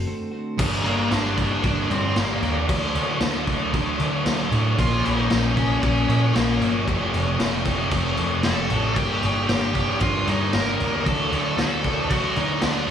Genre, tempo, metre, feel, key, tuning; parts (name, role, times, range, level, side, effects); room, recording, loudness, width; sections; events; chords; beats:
quiet-loud alternative rock; 115 BPM; 4/4; straight; G minor; A4 = 442 Hz
twelve-string electric guitar; arpeggios; 0.0-0.6 s; D3 to F#4; -32 LUFS; right 1 dB; slapback echo
hollow-body short-scale picked electric bass; bass; 0.0-12.8 s; F1 to D3; -26 LUFS; equal
sludgy distorted guitar; riff; 0.6-12.9 s; F2 to D4; -28 LUFS; right 11 dB; overdrive
thick fuzz guitar; riff; 0.6-12.9 s; F2 to D4; -28 LUFS; left 13 dB; distortion, slapback echo
raw garage drum kit; drums; 0.6-12.7 s; crash cymbal, kick drum, snare drum; -24 LUFS; left 1 dB
octave-fuzz lead guitar; melody; 0.8-12.9 s; Bb3 to Bb5; -27 LUFS; left 1 dB; distortion, analog delay
studio reverb; live gig heard through the venue's PA, club reverb; -20 LUFS; side -8 dB against mid
0.6-12.9 A section
break 0.1-0.6
0.0 D7; 0.6 Gm; 2.7 D; 4.8 Bbm; 6.9 F; 9.0 Gm; 11.1 D
0.06 | 0.59 1.11 1.64 2.16 | 2.68 3.21 3.73 4.26 | 4.78 5.30 5.83 6.35 | 6.88 7.40 7.92 8.45 | 8.97 9.49 10.01 10.54 | 11.06 11.58 12.10 12.62